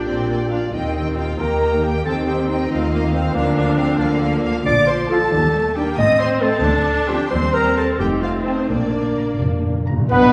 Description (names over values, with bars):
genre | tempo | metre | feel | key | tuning
quick classical-period movement for symphony orchestra | 90 BPM (dotted quarters) | 6/8 | rubato | Bb major | A4 = 440 Hz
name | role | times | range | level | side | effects
rich chamber violin section | melody | 0.0-10.3 s | B3 to C6 | -34 LUFS | equal | none
dark studio violin section | second line | 0.0-10.3 s | D4 to Eb6 | -31 LUFS | equal | none
warm clarinet | second line | 0.0-10.3 s | Bb3 to Eb5 | -23 LUFS | equal | none
rich studio viola section | accompaniment | 0.0-10.3 s | F3 to B4 | -27 LUFS | equal | none
mellow French horn section | sustained chords | 0.0-10.3 s | F3 to G4 | -26 LUFS | equal | none
warm chamber cello section | bass | 0.1-10.3 s | D2 to Eb3 | -28 LUFS | equal | none
warm chamber double bass section | bass | 0.1-10.3 s | F1 to Eb2 | -27 LUFS | equal | none
timpani | percussion | 8.7-10.3 s | G2 to Bb2 | -24 LUFS | equal | none
baroque flute | second line | 10.1-10.3 s | B4 | -22 LUFS | equal | none
warm cor anglais | second line | 10.1-10.3 s | B4 | -28 LUFS | equal | none
warm bassoon | accompaniment | 10.1-10.3 s | B3 | -21 LUFS | equal | none
clear trumpet | stabs | 10.1-10.3 s | B4 | -22 LUFS | equal | none
room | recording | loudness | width
wet recital hall reverb, RT60 1.4 s | heard from further back in the room | -19 LUFS | mono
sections
0.0-10.1 A section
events
timpani fill 8.7-10.1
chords
0.0 Bb; 0.7 Eb; 2.1 Cm/Eb; 2.7 F7/Eb; 3.4 Bb/D; 4.7 Bb5; 5.3 Eb; 6.0 Adim; 6.6 D7(no3); 7.3 Cm/Eb; 8.0 F7; 8.7 Bb